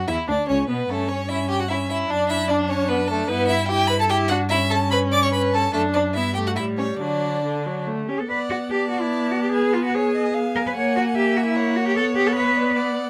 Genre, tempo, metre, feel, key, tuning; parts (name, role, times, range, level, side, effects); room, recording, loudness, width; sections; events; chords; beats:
quick classical-period movement for string quartet; 148 BPM; 3/4; rubato; D major; A4 = 440 Hz
rich violin; second line; 0.0-13.1 s; A3 to F#5; -28 LUFS; equal
rich cello; bass; 0.0-12.7 s; C#2 to C#5; -27 LUFS; equal
rich violin; melody; 0.1-13.1 s; A4 to D6; -29 LUFS; equal
rich viola; accompaniment; 0.1-13.1 s; D3 to E4; -27 LUFS; equal
little or no reverb; close, detailed microphones; -22 LUFS; mono
0.0-8.3 A section; 8.3-13.1 B section
0.0 E5; 0.9 A7/G; 2.1 D/F#; 3.3 Em/G; 4.5 A9/G; 5.7 D/F#; 6.1 Em/G; 6.6 A7; 7.0 D; 8.3 Bm; 9.5 C#7/B (rootless); 10.8 F#7/A#; 12.0 Bm
0.09 0.49 | 0.89 1.29 1.69 | 2.10 2.50 2.90 | 3.29 3.69 4.10 | 4.50 4.91 5.32 | 5.73 6.14 6.56 | 6.99 7.42 7.86 | 8.29 8.71 9.12 | 9.54 9.95 10.35 | 10.76 11.16 11.57 | 11.96 12.36 12.76